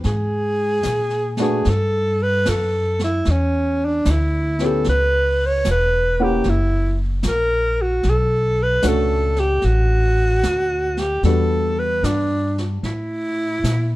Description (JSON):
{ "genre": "jazz ballad", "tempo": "75 BPM", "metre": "4/4", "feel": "swing 68% on 8ths", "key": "unclear", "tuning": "A4 = 440 Hz", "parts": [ { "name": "warm baby grand piano", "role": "accompaniment", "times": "0.0-12.9 s", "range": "G3 to F#5", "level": "-25 LUFS", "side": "left 1 dB", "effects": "none" }, { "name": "upright bass", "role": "bass", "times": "0.0-14.0 s", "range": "E1 to A#2", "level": "-20 LUFS", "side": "equal", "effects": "none" }, { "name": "jazz brush drum kit", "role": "drums", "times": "0.0-14.0 s", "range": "brushed snare drum, hi-hat, snare drum", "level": "-31 LUFS", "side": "right 1 dB", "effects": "none" }, { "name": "warm alto saxophone", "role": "melody", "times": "0.1-14.0 s", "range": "C#4 to C#5", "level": "-20 LUFS", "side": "equal", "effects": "none" } ], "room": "light reverb", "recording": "dark, warm production", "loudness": "-17 LUFS", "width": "side -17 dB against mid", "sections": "0.0-14.0 A section", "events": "none", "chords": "0.0 G#sus2; 1.6 Gmaj7(no3); 4.9 Esus2; 6.5 F#; 8.0 Bm9; 11.2 Em7; 12.8 A5" }